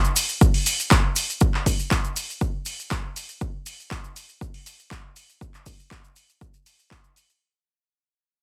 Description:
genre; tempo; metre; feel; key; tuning
house; 120 BPM; 4/4; straight; none; none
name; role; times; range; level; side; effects
maracas; percussion; 0.0-7.4 s; none; -30 LUFS; equal; none
punchy analog drum machine; drums; 0.2-7.3 s; handclaps, hi-hat; -28 LUFS; equal; none
electronic kick drum; drums; 0.4-7.0 s; none; -24 LUFS; equal; none
room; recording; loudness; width
little or no reverb; heavily compressed radio sound, multiband compression; -23 LUFS; mono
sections
0.0-7.4 A section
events
fade-out 0.0-7.4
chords
none

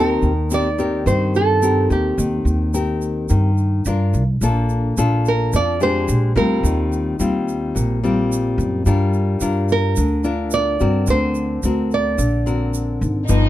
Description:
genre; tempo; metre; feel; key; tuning
bossa nova; 108 BPM; 4/4; straight; Bb major from 4.4 s; A4 = 436 Hz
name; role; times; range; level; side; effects
nylon-string guitar; melody; 0.0-13.0 s; G4 to D5; -21 LUFS; right 3 dB; none
nylon-string guitar; accompaniment; 0.0-13.5 s; G2 to Bb4; -21 LUFS; left 3 dB; none
upright bass; bass; 0.0-13.5 s; G1 to G2; -19 LUFS; equal; none
egg shaker; percussion; 0.2-13.5 s; none; -34 LUFS; right 6 dB; none
warm studio violin section; second line; 13.3-13.5 s; D#4; -22 LUFS; left 1 dB; none
room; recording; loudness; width
light reverb; dark, warm production; -16 LUFS; side -14 dB against mid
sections
0.0-4.4 A section; 4.4-13.5 B section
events
none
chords
0.0 Cm7/Eb; 3.9 Gm7; 4.4 Bbmaj7; 6.1 Bb13; 6.6 Eb69; 8.9 Gm7; 11.1 Daug7

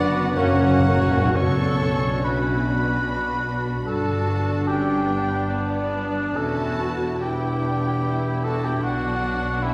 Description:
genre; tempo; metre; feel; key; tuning
classical, slow romantic movement for symphony orchestra; 72 BPM; 3/4; uneven beats, rubato; B minor; A4 = 438 Hz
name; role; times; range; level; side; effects
muted symphonic violin section; melody; 0.0-9.7 s; D5 to C#6; -37 LUFS; equal; none
mellow clarinet; second line; 0.0-1.0 s; C#4 to D4; -30 LUFS; equal; none
mellow hollow concert flute; second line; 0.0-0.8 s; F#5; -39 LUFS; equal; none
muted symphonic violin section; second line; 0.0-9.7 s; B3 to D5; -34 LUFS; equal; none
warm cor anglais; second line; 0.0-9.7 s; D4 to D5; -29 LUFS; equal; none
muted symphonic viola section; accompaniment; 0.0-9.7 s; B3 to A4; -32 LUFS; equal; none
clear trombone section; sustained chords; 0.0-1.0 s; none; barely audible; none; none
dark French horn section; sustained chords; 0.0-1.4 s; A#3 to C#4; -28 LUFS; equal; none
concert harp; arpeggios; 0.0-9.7 s; E2 to B5; -30 LUFS; equal; none
muted chamber cello section; bass; 0.0-9.7 s; E2 to B2; -33 LUFS; equal; none
muted symphonic double bass section; bass; 0.0-9.7 s; E1 to B1; -30 LUFS; equal; none
dark bassoon; accompaniment; 0.4-1.0 s; A#3; -34 LUFS; equal; none
timpani; percussion; 0.4-1.3 s; F#2; -28 LUFS; equal; none
room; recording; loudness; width
wet scoring stage reverb, RT60 1.8 s; heard from further back in the room; -22 LUFS; mono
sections
0.0-1.4 A section; 1.4-9.7 B section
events
timpani fill 0.4-1.4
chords
0.4 F#; 1.4 Bm; 3.9 G; 6.4 Em7; 8.8 Bm

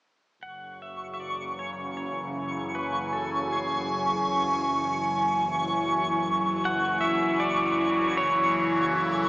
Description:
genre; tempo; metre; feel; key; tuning
ambient; 78 BPM; 4/4; straight; unclear; A4 = 444 Hz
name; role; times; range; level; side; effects
pedal steel guitar; melody; 0.4-9.3 s; G#4 to F#5; -30 LUFS; equal; diffuse ambient delay
evolving wavetable pad; sustained chords; 1.7-9.3 s; C#3 to G#5; -27 LUFS; equal; phaser, built-in reverb
rich symphonic double bass section; bass; 0.4-9.3 s; F#1; -39 LUFS; equal; none
bowed-like drone; drone; 0.9-9.3 s; C#3 to F#3; -38 LUFS; equal; built-in reverb, phaser
twinkling granular texture; texture; 1.0-9.3 s; C#6; -29 LUFS; right 1 dB; built-in reverb
room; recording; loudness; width
wet cathedral reverb, RT60 6.6 s; cassette tape, small speaker sound; -24 LUFS; side -20 dB against mid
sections
0.4-9.3 A section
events
fade-in on pedal steel guitar 0.4-9.3; fade-out on synth drone 0.4-9.3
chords
0.4 F#7sus2

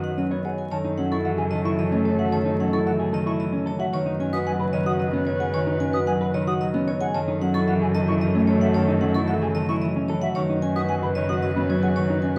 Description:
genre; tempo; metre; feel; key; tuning
classical, minimalist pattern music; 112 BPM; 3/4; straight; F# dorian; A4 = 439 Hz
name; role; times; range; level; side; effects
vibraphone with hard mallets; melody; 0.0-12.4 s; A4 to G#5; -33 LUFS; equal; none
mellow soprano saxophone; second line; 0.0-12.4 s; A4 to B4; -33 LUFS; equal; none
Celtic harp; accompaniment; 0.0-12.4 s; C#3 to B3; -27 LUFS; equal; none
semi-hollow electric guitar; arpeggios; 0.0-12.4 s; C#4 to C#5; -31 LUFS; equal; none
clear cello; bass; 0.0-12.4 s; F#2; -31 LUFS; equal; none
concert flute; arpeggios; 0.4-12.4 s; E5 to D#6; -35 LUFS; equal; none
room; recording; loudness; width
wet large studio reverb, RT60 1.4 s; worn, warbling old tape, cassette tape, vinyl crackle, warbly pitch drift; -23 LUFS; mono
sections
0.7-12.4 A section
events
none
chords
0.0 G#m7/F#; 0.7 F#m7; 3.9 G#m7/F#; 7.1 F#m7; 10.4 G#m7/F#

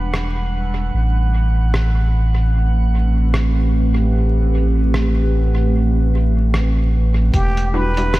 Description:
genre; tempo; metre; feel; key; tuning
ambient dub; 75 BPM; 4/4; swing 59% on 16ths; unclear; A4 = 442 Hz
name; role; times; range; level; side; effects
warbly tape-like pad; sustained chords; 0.0-8.2 s; A2 to F#5; -24 LUFS; right 1 dB; chorus, built-in reverb, phaser
warm sub bass; bass; 0.0-8.2 s; E1 to A1; -16 LUFS; equal; none
drifting glass-harmonics texture; texture; 0.0-7.4 s; F#5; -33 LUFS; right 5 dB; chorus, built-in reverb
lo-fi sampler-style drum kit; drums; 0.1-8.2 s; hi-hat, rim click; -27 LUFS; equal; studio reverb, dub echo
trumpet with plunger mute; melody; 7.3-8.2 s; G4 to B4; -29 LUFS; right 1 dB; dub echo
electronic kick drum; drums; 7.3-7.5 s; none; -18 LUFS; equal; studio reverb
filtered dub chord stab; stabs; 7.7-8.1 s; G3 to F#4; -22 LUFS; left 1 dB; chorus
room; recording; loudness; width
light reverb, digital ambience; vinyl crackle; -15 LUFS; side -18 dB against mid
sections
0.0-7.3 A section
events
filter sweep on ambient pad 0.0-7.3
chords
0.0 Em9; 0.9 Am9; 7.3 Em9

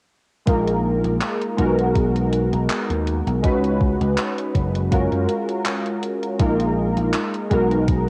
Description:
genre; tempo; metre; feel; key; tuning
vaporwave; 81 BPM; 4/4; swing 55% on 16ths; unclear; A4 = 439 Hz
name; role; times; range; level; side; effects
warbly lo-fi synth keys; accompaniment; 0.5-8.1 s; G#3 to B4; -24 LUFS; equal; analog chorus, cassette tape, tape echo
vintage slap bass; bass; 0.5-8.1 s; F#1 to F#2; -24 LUFS; equal; tube saturation
electronic kick drum; drums; 0.5-8.0 s; none; -23 LUFS; equal; overdrive, cassette tape
gated 80s digital drum machine; drums; 0.5-8.0 s; handclaps, hi-hat; -31 LUFS; equal; gated reverb, overdrive, cassette tape
room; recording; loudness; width
light reverb, digital ambience; home recording on cassette; -21 LUFS; mono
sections
0.5-8.1 A section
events
none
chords
0.5 A#7sus4; 1.6 G#m9/B; 3.4 C#7sus4; 4.9 F#maj9; 6.4 A#7sus4; 7.5 G#m9/B

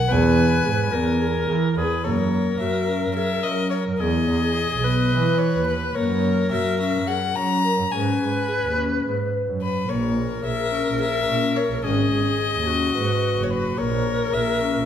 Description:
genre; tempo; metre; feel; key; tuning
contemporary instrumental, chamber music in an uneven meter; 215 BPM (eighths); 7/8; straight; F# mixolydian; A4 = 443 Hz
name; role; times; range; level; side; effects
clear violin; melody; 0.0-14.9 s; B4 to A#5; -26 LUFS; left 6 dB; none
vibraphone with medium mallets; arpeggios; 0.0-14.8 s; A#3 to B4; -26 LUFS; left 3 dB; none
bright clarinet; second line; 0.1-14.9 s; F#4 to B4; -26 LUFS; left 2 dB; none
warm double bass; bass; 0.1-14.9 s; F#1 to F#3; -24 LUFS; right 4 dB; none
room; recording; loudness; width
wet recital hall reverb, RT60 1.5 s; none; -19 LUFS; side -9 dB against mid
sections
0.0-2.0 A section; 2.0-14.9 B section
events
none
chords
0.1 E; 2.0 F#7; 4.0 Emaj7; 6.0 F#; 7.9 G#m7; 9.9 A#m7b5; 11.8 G#m7; 13.8 A#m7b5

